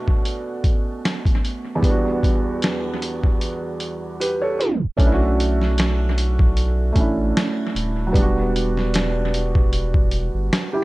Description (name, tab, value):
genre	lo-fi hip hop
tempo	76 BPM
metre	4/4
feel	swing 56% on 16ths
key	E dorian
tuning	A4 = 440 Hz
part	felt-muted upright piano	accompaniment	0.0-10.8 s	E2 to D5	-23 LUFS	right 2 dB	low-pass filter, analog delay
part	boom bap sampler-style drum kit	drums	0.1-10.7 s	hi-hat, kick drum, snare drum	-20 LUFS	equal	analog delay
part	saturated sub bass	bass	5.0-10.5 s	D#1 to B1	-21 LUFS	equal	none
room	little or no reverb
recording	echo-heavy mix, tape stop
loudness	-18 LUFS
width	side -20 dB against mid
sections	0.0-5.0 A section; 5.0-10.8 B section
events	drum fill 3.4-5.0; tape stop 4.6-5.0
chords	0.0 Bm9; 1.8 Em7; 5.0 Bm9; 8.1 Em7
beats	0.25 1.04 | 1.83 2.62 3.40 4.19 | 4.98 5.77 6.56 7.35 | 8.14 8.93 9.72 10.51